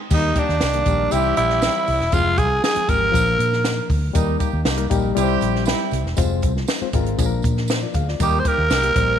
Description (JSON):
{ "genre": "uptempo 1960s-style soul", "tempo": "119 BPM", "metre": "4/4", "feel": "straight", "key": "Eb major", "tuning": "A4 = 441 Hz", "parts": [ { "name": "growling tenor saxophone", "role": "melody", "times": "0.1-3.9, 8.2-9.2 s", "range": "D4 to C5", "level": "-19 LUFS", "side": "right 1 dB", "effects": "slapback echo" }, { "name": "warm horn section", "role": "second line", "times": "0.1-9.2 s", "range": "G3 to Bb4", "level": "-27 LUFS", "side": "right 10 dB", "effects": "none" }, { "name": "barky reed electric piano", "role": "accompaniment", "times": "0.1-9.2 s", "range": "D3 to F5", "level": "-25 LUFS", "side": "left 8 dB", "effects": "overdrive" }, { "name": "vintage muted fingered electric bass", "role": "bass", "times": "0.1-9.2 s", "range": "E1 to Bb2", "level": "-23 LUFS", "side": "equal", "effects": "none" }, { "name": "compact cocktail drum kit", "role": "drums", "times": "0.1-9.1 s", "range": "crash cymbal, hi-hat, kick drum, snare drum", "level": "-23 LUFS", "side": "equal", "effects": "none" }, { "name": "tambourine", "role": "percussion", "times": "0.1-9.1 s", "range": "none", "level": "-37 LUFS", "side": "right 13 dB", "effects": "none" } ], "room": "moderate echo chamber reverb, RT60 1.6 s, small room ambience", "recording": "1960s-style stereo with parts hard left and right", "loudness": "-17 LUFS", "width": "side -9 dB against mid", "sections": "0.1-9.2 A section", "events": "none", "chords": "0.1 Eb; 1.1 C; 2.1 Fm; 3.1 Bb; 4.2 Eb; 5.2 C; 6.2 Fm; 7.2 Bb; 8.2 Eb", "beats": "| 0.11 0.61 1.12 1.63 | 2.13 2.64 3.15 3.65 | 4.16 4.66 5.17 5.67 | 6.18 6.68 7.19 7.70 | 8.20 8.70" }